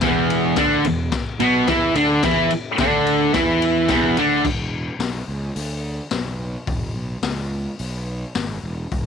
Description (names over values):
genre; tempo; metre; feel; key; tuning
garage rock duo or trio; 108 BPM; 4/4; straight; unclear; A4 = 440 Hz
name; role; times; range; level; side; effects
fuzz guitar; riff; 0.0-4.4 s; E2 to E4; -16 LUFS; equal; distortion
fuzz fingered electric bass; bass; 0.0-9.1 s; E1 to E2; -27 LUFS; equal; overdrive
raw garage drum kit; drums; 0.0-9.0 s; crash cymbal, hi-hat, kick drum, ride cymbal, snare drum; -26 LUFS; left 4 dB; none
room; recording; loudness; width
light reverb; 1960s-style stereo; -18 LUFS; side -7 dB against mid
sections
0.0-4.4 A section; 4.4-9.1 B section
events
none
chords
0.0 E5